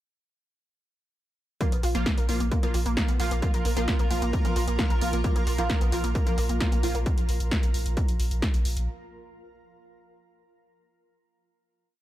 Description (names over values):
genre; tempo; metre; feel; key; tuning
driving peak-time techno; 132 BPM; 4/4; straight; unclear; A4 = 440 Hz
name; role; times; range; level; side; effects
warbly dusty pluck; riff; 1.6-7.1 s; Bb3 to Bb4; -32 LUFS; equal; overdrive, ensemble chorus, sidechain pumping, digital delay
rave stab; stabs; 1.6-7.0 s; F3 to F4; -33 LUFS; right 1 dB; chorus, built-in reverb, sidechain pumping, digital delay
electronic kick drum; drums; 1.6-8.5 s; none; -25 LUFS; equal; overdrive, small room ambience
techno drum kit; drums; 1.6-8.9 s; hi-hat, snare drum; -33 LUFS; equal; overdrive, sidechain pumping on hats, small room ambience
granular cloud pad; texture; 2.7-7.1 s; F4 to Bb5; -36 LUFS; right 2 dB; built-in reverb, sidechain pumping
saturated sub bass; bass; 1.7-8.9 s; Bb1; -29 LUFS; equal; sidechain pumping, low-pass filter
room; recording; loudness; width
digital ambience; none; -23 LUFS; side -14 dB against mid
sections
1.6-8.9 groove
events
none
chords
1.6 Bb5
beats
| 1.61 2.06 2.52 2.97 | 3.42 3.88 4.33 4.79 | 5.24 5.70 6.15 6.61 | 7.06 7.51 7.97 8.42